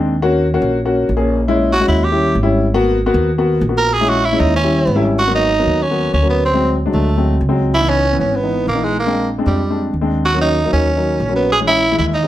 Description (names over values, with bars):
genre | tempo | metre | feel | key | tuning
Afro-Cuban jazz | 190 BPM | 4/4 | straight | G# minor | A4 = 440 Hz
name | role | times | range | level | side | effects
warm baby grand piano | accompaniment | 0.0-12.3 s | E3 to G#4 | -17 LUFS | left 2 dB | none
upright bass | bass | 0.0-12.3 s | G#1 to E#2 | -18 LUFS | equal | none
growling tenor saxophone | melody | 1.7-12.3 s | G3 to A#4 | -16 LUFS | right 2 dB | slapback echo
room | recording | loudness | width
moderate club reverb, RT60 0.5 s | none | -13 LUFS | side -13 dB against mid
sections
0.0-5.2 A section; 5.2-12.3 B section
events
tenor saxophone solo 0.0-5.2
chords
0.2 D#m7; 1.4 A#m7b5; 2.0 D#7b9; 2.7 G#m9; 3.9 A#m7b5; 4.6 D#7b9; 5.2 G#m9; 6.5 D7#11; 7.7 C#m9; 9.0 A#7; 10.3 D#m7; 11.5 A#m7b5